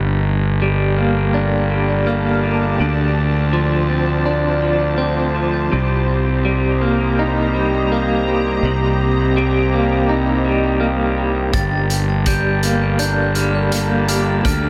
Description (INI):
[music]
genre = post-rock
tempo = 82 BPM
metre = 4/4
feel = straight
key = G minor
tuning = A4 = 439 Hz
[part]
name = evolving wavetable pad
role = sustained chords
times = 0.8-14.7 s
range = F4 to Bb5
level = -28 LUFS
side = equal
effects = ensemble chorus, built-in reverb
[part]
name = electric guitar through a small old amp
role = arpeggios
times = 0.0-14.7 s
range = G2 to Eb4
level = -22 LUFS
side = equal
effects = tremolo, digital delay
[part]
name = fuzz fingered electric bass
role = bass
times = 0.0-14.7 s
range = G1 to D2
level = -20 LUFS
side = equal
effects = overdrive
[part]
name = glockenspiel with brass mallets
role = arpeggios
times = 11.5-14.7 s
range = F6 to A6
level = -27 LUFS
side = equal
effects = digital delay, slapback echo
[part]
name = loose indie drum kit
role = drums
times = 11.5-14.6 s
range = hi-hat, kick drum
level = -24 LUFS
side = equal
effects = none
[sound]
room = wet lush hall reverb, RT60 2.9 s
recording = big arena sound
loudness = -17 LUFS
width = mono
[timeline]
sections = 0.0-14.7 A section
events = none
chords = 0.0 Gmadd9; 2.8 Dm7; 5.7 Cm7; 11.5 Gmadd9